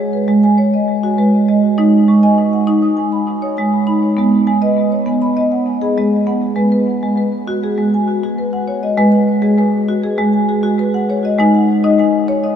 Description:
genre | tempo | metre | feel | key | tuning
world meditative, meditative tuned percussion | 100 BPM | 4/4 | straight | G# minor pentatonic | A4 = 441 Hz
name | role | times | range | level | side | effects
marimba with medium mallets | solo | 0.0-12.6 s | G#3 to D#6 | -12 LUFS | equal | tape echo
room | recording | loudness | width
wet huge ambient reverb, RT60 7.9 s | dreamy mix soaked in reverb | -12 LUFS | side -8 dB against mid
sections
0.0-6.6 A section; 6.6-12.6 B section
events
none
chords
0.0 G#madd11; 11.4 G#7sus4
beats
0.57 1.17 | 1.77 2.37 2.97 3.57 | 4.17 4.77 5.37 5.97 | 6.57 7.17 7.77 8.37 | 8.97 9.57 10.18 10.78 | 11.37 11.97

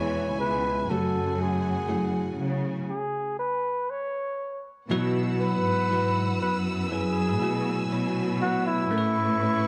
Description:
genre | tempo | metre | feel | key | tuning
pop ballad | 60 BPM | 4/4 | straight | unclear | A4 = 439 Hz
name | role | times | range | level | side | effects
breathy flugelhorn | melody | 0.0-9.7 s | E4 to C#5 | -30 LUFS | equal | slapback echo
bell-like tine electric piano | accompaniment | 0.0-9.7 s | C#3 to C#5 | -32 LUFS | equal | none
clear symphonic string section | sustained chords | 0.0-9.7 s | B4 to E6 | -39 LUFS | equal | none
fingerpicked steel-string acoustic guitar | arpeggios | 0.0-9.7 s | B2 to B4 | -39 LUFS | equal | none
warm symphonic cello section | bass | 0.0-9.7 s | C#2 to C#3 | -32 LUFS | equal | none
room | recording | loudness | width
moderate spring reverb, RT60 2.2 s | none | -27 LUFS | mono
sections
0.0-4.9 A section; 4.9-9.7 B section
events
stop 2.9-4.9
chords
0.0 E; 0.9 F#madd9; 4.9 Bsus4; 8.9 Aadd9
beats
| 0.90 1.90 2.89 3.90 | 4.91 5.92 6.92 7.92 | 8.92

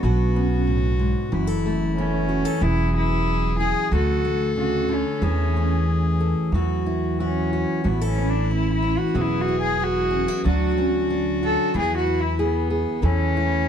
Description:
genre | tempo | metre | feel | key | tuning
acoustic folk-pop ballad | 92 BPM | 4/4 | straight | A major | A4 = 437 Hz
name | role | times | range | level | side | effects
warm cello | melody | 0.0-13.7 s | B3 to A4 | -25 LUFS | equal | none
bright clarinet | second line | 0.0-13.7 s | E4 to A4 | -30 LUFS | left 4 dB | none
fingerpicked steel-string acoustic guitar | accompaniment | 0.0-13.7 s | F#2 to A4 | -26 LUFS | left 1 dB | none
concert harp | arpeggios | 0.0-13.7 s | E3 to E4 | -28 LUFS | right 2 dB | none
upright bass | bass | 0.0-13.7 s | E1 to E2 | -24 LUFS | right 1 dB | none
room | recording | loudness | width
little or no reverb | dark, warm production | -20 LUFS | side -8 dB against mid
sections
0.0-13.7 A section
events
none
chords
0.0 Bsus2; 1.3 F#m7; 2.6 Eadd9; 3.9 D; 5.2 A/E; 6.5 Esus2; 7.8 Aadd9; 9.1 Eadd9; 10.4 Dmaj7; 11.7 E; 13.0 A/E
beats
| 0.04 0.69 1.33 1.98 | 2.62 3.27 3.92 4.57 | 5.22 5.87 6.53 7.18 | 7.84 8.49 9.14 9.79 | 10.45 11.10 11.74 12.39 | 13.03 13.68

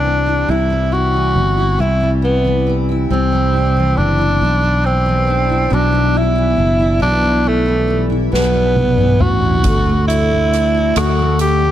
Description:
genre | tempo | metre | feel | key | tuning
six-eight pop ballad | 46 BPM (dotted quarters) | 6/8 | straight | unclear | A4 = 440 Hz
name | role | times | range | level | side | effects
raspy tenor saxophone | melody | 0.0-11.7 s | A3 to G4 | -17 LUFS | equal | none
picked steel-string acoustic guitar | accompaniment | 0.0-11.7 s | B2 to F#4 | -20 LUFS | equal | double-tracked left and right
fretless electric bass | bass | 0.0-11.7 s | F#1 to D2 | -16 LUFS | equal | none
soft-mallet drum kit | drums | 8.3-11.6 s | hi-hat, kick drum, rim click, snare drum, toms | -19 LUFS | equal | none
room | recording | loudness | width
light reverb, small room ambience | none | -12 LUFS | side -12 dB against mid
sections
0.0-11.7 A section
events
drum fill 8.3-9.6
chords
0.0 C; 4.4 G6; 9.6 D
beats
0.48 | 1.79 3.10 | 4.41 5.71 | 7.01 8.32 | 9.64 10.96

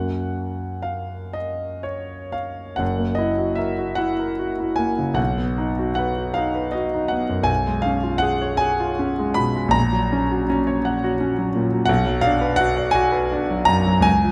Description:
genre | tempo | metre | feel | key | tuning
classical, romantic nocturne for solo piano | 38-59 BPM (dotted quarters) | 6/8 | rubato | F# major | A4 = 441 Hz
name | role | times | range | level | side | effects
warm concert grand piano | solo | 0.0-14.3 s | F#1 to B5 | -22 LUFS | equal | none
room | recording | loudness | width
moderate concert hall reverb, RT60 1.8 s | close, detailed microphones | -22 LUFS | mono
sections
0.0-2.8 A section; 2.8-14.3 B section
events
none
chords
0.0 F#; 2.8 F#7; 5.2 B; 7.5 C#7/B; 9.8 F#/A#; 11.9 Bm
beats
1.38 | 2.81 4.00 | 5.20 6.38 | 7.49 8.60 | 9.76 10.85 | 11.88 12.96 | 14.06

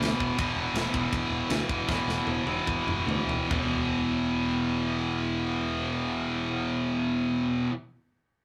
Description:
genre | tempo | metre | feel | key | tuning
heavy metal | 139-164 BPM | 4/4 | straight | unclear | A4 = 439 Hz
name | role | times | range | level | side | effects
high-gain distorted guitar | riff | 0.0-7.7 s | E2 to E3 | -33 LUFS | equal | distortion
scooped high-gain guitar | riff | 0.0-7.7 s | E2 to E3 | -32 LUFS | equal | distortion
picked electric bass | bass | 0.0-7.7 s | E1 to D2 | -37 LUFS | equal | none
tight metal drum kit | drums | 0.0-3.6 s | kick drum, ride cymbal, snare drum, toms | -35 LUFS | equal | none
room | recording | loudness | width
light reverb | rough rehearsal-room recording, tube saturation | -28 LUFS | mono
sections
0.0-3.5 A section; 3.5-7.0 B section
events
slowing down 0.4-3.5; drum fill 1.9-3.5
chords
0.0 E5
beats
0.01 | 0.38 0.75 1.12 1.49 | 1.88 2.27 2.67 3.08 | 3.50 3.93 4.36 4.79 | 5.23 5.66 6.09 6.52

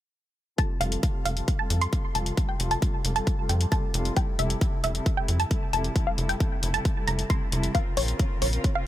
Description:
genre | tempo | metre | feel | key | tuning
uplifting trance | 134 BPM | 4/4 | straight | F major | A4 = 440 Hz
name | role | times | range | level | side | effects
wide unison pluck | melody | 0.6-8.9 s | Db5 to C6 | -31 LUFS | moving between left 7 dB and right 7 dB | auto-pan, sidechain pumping, dub echo
warm symphonic string section | sustained chords | 0.6-8.9 s | C3 to Bb4 | -34 LUFS | equal | sidechain pumping, low-pass filter
electronic hi-hat | drums | 0.6-8.7 s | none | -33 LUFS | left 3 dB | none
electronic kick drum | drums | 0.6-8.7 s | none | -26 LUFS | equal | overdrive
tight sequencer bass | bass | 0.8-8.6 s | F1 to F2 | -27 LUFS | equal | tube saturation, sidechain pumping
room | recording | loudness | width
little or no reverb | none | -24 LUFS | side -13 dB against mid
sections
0.6-8.9 A section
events
filter sweep on string section 0.6-8.9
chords
0.6 Fadd9; 7.7 Bbmadd9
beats
| 0.58 1.03 1.48 1.93 | 2.37 2.82 3.27 3.72 | 4.17 4.61 5.06 5.51 | 5.96 6.40 6.85 7.30 | 7.75 8.20 8.64

